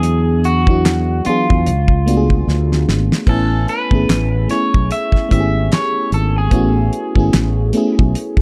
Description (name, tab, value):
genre	R&B, neo-soul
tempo	74 BPM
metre	4/4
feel	swing 58% on 16ths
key	unclear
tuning	A4 = 441 Hz
part	electric guitar at the edge of break-up	melody	0.0-7.9 s	E#4 to E5	-24 LUFS	equal	plate reverb, tape echo
part	FM electric piano	accompaniment	0.0-8.4 s	E3 to G#5	-21 LUFS	equal	chorus, plate reverb
part	fretless electric bass	bass	0.0-8.4 s	G#1 to E2	-19 LUFS	equal	none
part	damped 70s drum kit	drums	0.0-8.4 s	crash cymbal, handclaps, hi-hat, kick drum, snare drum	-18 LUFS	equal	none
room	light reverb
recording	dark, warm production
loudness	-15 LUFS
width	mono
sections	0.0-3.3 A section; 3.3-8.4 B section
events	drum fill 2.5-3.3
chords	0.0 E9; 1.7 C#7b9b13; 3.3 Amaj9